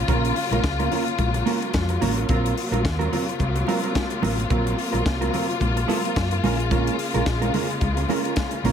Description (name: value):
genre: disco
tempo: 109 BPM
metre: 4/4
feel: swing 56% on 16ths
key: Bb minor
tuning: A4 = 441 Hz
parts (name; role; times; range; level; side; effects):
- dark studio string section; sustained chords; 0.0-8.7 s; C3 to F4; -26 LUFS; left 3 dB; none
- hollow-body short-scale fingered electric bass; bass; 0.0-8.7 s; A1 to Gb2; -25 LUFS; equal; none
- mellow electric guitar; accompaniment; 0.1-8.7 s; Gb3 to Bb4; -26 LUFS; right 8 dB; none
- tight funk drum kit; drums; 0.1-8.7 s; hi-hat, kick drum, snare drum; -28 LUFS; left 1 dB; none
- congas; percussion; 0.1-8.7 s; none; -32 LUFS; left 6 dB; none
room: little or no reverb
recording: none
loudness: -20 LUFS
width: side -8 dB against mid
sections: 0.0-8.7 A section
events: none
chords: 0.0 Gbmaj7/Bb; 2.3 Ebm69 (rootless); 6.4 Bbm7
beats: | 0.08 0.63 1.19 1.74 | 2.29 2.85 3.40 3.95 | 4.50 5.06 5.61 6.16 | 6.71 7.26 7.82 8.37